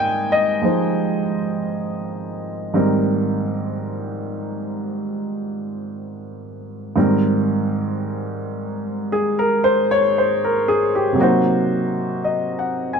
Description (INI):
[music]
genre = jazz ballad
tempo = 57 BPM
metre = 4/4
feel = swing 66% on 8ths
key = Ab major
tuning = A4 = 439 Hz
[part]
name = warm baby grand piano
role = solo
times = 0.0-13.0 s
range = Ab2 to Ab5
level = -18 LUFS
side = equal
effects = none
[sound]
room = moderate studio ambience, RT60 0.5 s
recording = none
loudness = -18 LUFS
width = side -6 dB against mid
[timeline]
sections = 0.0-7.0 A section; 7.0-13.0 B section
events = none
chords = 0.0 Abmaj9; 11.2 Cm7b5